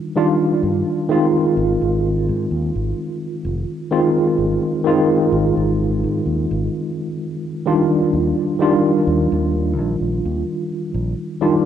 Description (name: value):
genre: vaporwave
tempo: 64 BPM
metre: 4/4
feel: straight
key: Ab lydian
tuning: A4 = 440 Hz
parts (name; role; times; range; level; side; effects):
- tine electric piano; accompaniment; 0.0-11.7 s; Eb3 to F4; -17 LUFS; equal; overdrive, fast stereo tremolo, lush chorus, vintage 12-bit sampler grit, analog delay
- fingered electric bass; bass; 0.6-11.1 s; F1 to Ab2; -22 LUFS; equal; none
room: moderate plate reverb, RT60 2.8 s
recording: rough home demo mix, cassette tape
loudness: -16 LUFS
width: side -9 dB against mid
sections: 0.0-11.7 A section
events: none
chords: 0.0 Ebmaj9; 1.1 Ab6; 8.1 Ebmaj9